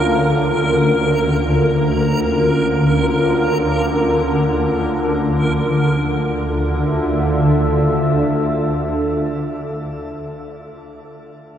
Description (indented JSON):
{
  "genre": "dark ambient drone",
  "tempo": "free time",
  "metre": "none",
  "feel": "none",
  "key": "D harmonic minor",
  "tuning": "A4 = 440 Hz",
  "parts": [
    { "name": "deep dark ambient pad", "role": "sustained chords", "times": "0.0-9.4 s", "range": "Db4 to F5", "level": "-20 LUFS", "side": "equal", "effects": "chorus, built-in reverb, shimmer reverb" },
    { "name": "swarming drone", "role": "drone", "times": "0.0-8.9 s", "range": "D2 to D3", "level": "-18 LUFS", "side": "equal", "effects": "built-in reverb" },
    { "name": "backwards swelling texture", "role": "texture", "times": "0.0-5.5 s", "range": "Bb4", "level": "-24 LUFS", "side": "right 1 dB", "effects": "built-in reverb, shimmer reverb" }
  ],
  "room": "wet huge ambient reverb, RT60 8.6 s",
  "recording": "none",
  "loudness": "-15 LUFS",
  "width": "side -9 dB against mid",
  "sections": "0.0-5.5 A section; 5.5-9.2 B section",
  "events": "none",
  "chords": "0.0 Bbm; 5.5 Dmadd9",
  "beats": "free time"
}